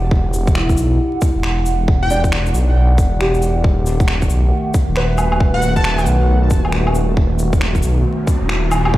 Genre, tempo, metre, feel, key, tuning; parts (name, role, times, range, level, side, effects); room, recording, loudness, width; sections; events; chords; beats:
future garage; 136 BPM; 4/4; swing 63% on 16ths; A4 = 440 Hz
felt-muted upright piano; accompaniment; 0.0-9.0 s; D4 to B4; -24 LUFS; equal; sidechain pumping, tape echo
warbly tape-like pad; sustained chords; 0.0-9.0 s; D#3 to F#5; -23 LUFS; right 1 dB; chorus, built-in reverb, sidechain pumping
swelling detuned saw bass; bass; 0.0-9.0 s; D#1 to B1; -16 LUFS; equal; sidechain pumping
electronic kick drum; drums; 0.1-9.0 s; -16 LUFS; equal; overdrive
electronic shaker, finger snaps and woodblock; drums; 0.3-8.9 s; -23 LUFS; equal; overdrive
plucky unison lead; melody; 2.0-2.2, 5.5-6.1 s; F#5 to A5; -25 LUFS; equal; tape echo
riser; sound effects; 7.9-9.0 s; -27 LUFS; left 1 dB
light reverb, digital ambience; played on a big sound system in a bare room, large studio reverb, vinyl crackle; -13 LUFS; side -16 dB against mid
0.0-9.0 A section
riser 7.9-9.0
0.0 Em7; 3.6 B7/D#
| 0.11 0.56 1.00 1.44 | 1.88 2.32 2.76 3.20 | 3.64 4.08 4.53 4.97 | 5.41 5.85 6.29 6.73 | 7.17 7.61 8.05 8.50 | 8.94